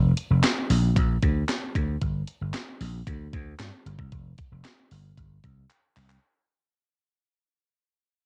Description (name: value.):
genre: early-eighties boogie funk.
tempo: 114 BPM.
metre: 4/4.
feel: straight.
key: unclear.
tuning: A4 = 444 Hz.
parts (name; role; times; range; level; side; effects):
vintage slap bass; bass; 0.0-6.2 s; F1 to G2; -27 LUFS; equal; transformer saturation.
clean 12-bit digital drum machine; drums; 0.2-6.2 s; handclaps, hi-hat, kick drum, snare drum; -30 LUFS; equal; none.
room: little or no reverb.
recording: home recording on cassette.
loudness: -26 LUFS.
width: mono.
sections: 0.0-6.2 A section.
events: fade-out 0.0-6.2; drum fill 5.7-6.2.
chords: none.